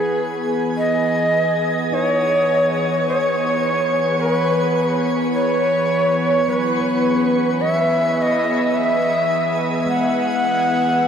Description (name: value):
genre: ambient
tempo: 53 BPM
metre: 4/4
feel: straight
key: E major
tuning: A4 = 440 Hz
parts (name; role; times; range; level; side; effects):
- breathy bright shakuhachi; melody; 0.0-11.1 s; G#4 to F#5; -18 LUFS; equal; tape echo
- warbly tape-like pad; sustained chords; 0.0-11.1 s; E3 to F#5; -22 LUFS; equal; chorus, built-in reverb
- handpan; arpeggios; 0.0-11.1 s; F#3 to E4; -37 LUFS; equal; none
- analog drone; drone; 0.0-11.1 s; E3 to B3; -28 LUFS; equal; chorus
- twinkling granular texture; texture; 0.0-11.1 s; G#4 to G#5; -33 LUFS; equal; built-in reverb
room: wet shimmer reverb, RT60 8.1 s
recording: none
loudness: -16 LUFS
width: side -7 dB against mid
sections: 0.0-11.1 A section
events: fade-in on synth texture 0.0-11.1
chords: 0.0 Eadd9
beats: | 0.79 1.92 3.05 4.18 | 5.32 6.45 7.58 8.71 | 9.85 10.98